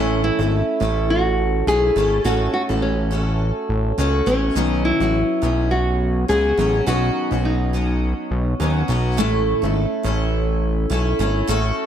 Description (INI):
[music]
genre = pop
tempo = 104 BPM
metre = 4/4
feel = swing 55% on 16ths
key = B mixolydian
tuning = A4 = 438 Hz
[part]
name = nylon-string guitar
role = melody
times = 0.0-8.6 s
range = C#4 to G#4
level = -22 LUFS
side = equal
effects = plate reverb
[part]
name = picked steel-string acoustic guitar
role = accompaniment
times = 0.0-11.9 s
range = A2 to A4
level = -22 LUFS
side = right 1 dB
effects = double-tracked left and right, plate reverb
[part]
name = fat analog bass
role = bass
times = 0.0-11.7 s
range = G#1 to D#2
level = -21 LUFS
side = equal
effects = none
[sound]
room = moderate studio reverb, RT60 0.8 s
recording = dark, warm production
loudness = -17 LUFS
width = side -9 dB against mid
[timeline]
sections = 0.0-11.9 A section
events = none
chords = 0.0 A; 2.3 F#m/A; 4.6 Badd9; 9.2 A